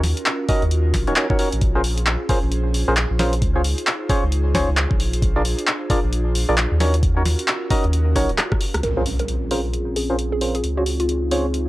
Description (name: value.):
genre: UK garage, two-step garage.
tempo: 133 BPM.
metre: 4/4.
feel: swing 60% on 16ths.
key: Bb minor.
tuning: A4 = 444 Hz.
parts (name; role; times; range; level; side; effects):
airy breathy pad; sustained chords; 0.0-11.7 s; C4 to C5; -28 LUFS; right 1 dB; chorus, sidechain pumping.
soft dub sub bass; bass; 0.0-11.7 s; Eb1 to Eb2; -21 LUFS; equal; tube saturation, sidechain pumping.
punchy analog drum machine; drums; 0.0-11.6 s; handclaps, hi-hat, rim click, snare drum; -24 LUFS; equal; overdrive.
percussive organ stab; stabs; 0.5-11.5 s; Db4 to Eb5; -24 LUFS; equal; chorus, tape echo.
electronic kick drum; drums; 0.5-8.6 s; none; -21 LUFS; equal; none.
hollow square pluck; melody; 8.8-11.2 s; F4 to Bb4; -27 LUFS; right 1 dB; chorus.
impact; sound effects; 8.8-10.6 s; none; -29 LUFS; equal; none.
room: light reverb.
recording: dry, gritty hardware recording, cassette tape.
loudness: -18 LUFS.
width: side -17 dB against mid.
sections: 0.0-8.8 A section; 8.8-11.7 B section.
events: drum fill 8.2-8.8; impact 8.8-10.6.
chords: 0.0 Ebm7; 1.6 Bbm9; 3.4 Dbmaj7; 5.0 Bb7; 6.8 Ebm7; 8.8 Bbm9; 10.6 Dbmaj7.